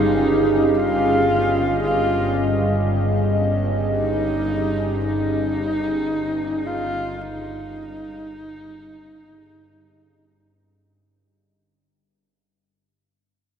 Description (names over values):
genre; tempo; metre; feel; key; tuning
dark ambient drone; free time; none; none; unclear; A4 = 442 Hz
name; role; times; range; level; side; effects
warm horsehead fiddle; melody; 0.0-10.4 s; D#4 to E#4; -24 LUFS; equal; diffuse ambient delay
dark analog pad; sustained chords; 0.0-11.5 s; C#4 to D#5; -23 LUFS; equal; chorus, phaser
bowed-like drone; drone; 0.0-11.6 s; G1 to G2; -25 LUFS; equal; built-in reverb
room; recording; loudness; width
wet cathedral reverb, RT60 6.2 s; in a vast, echoing space; -18 LUFS; side -8 dB against mid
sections
0.0-11.5 A section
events
fade-out 0.0-11.5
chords
0.0 C#add9/G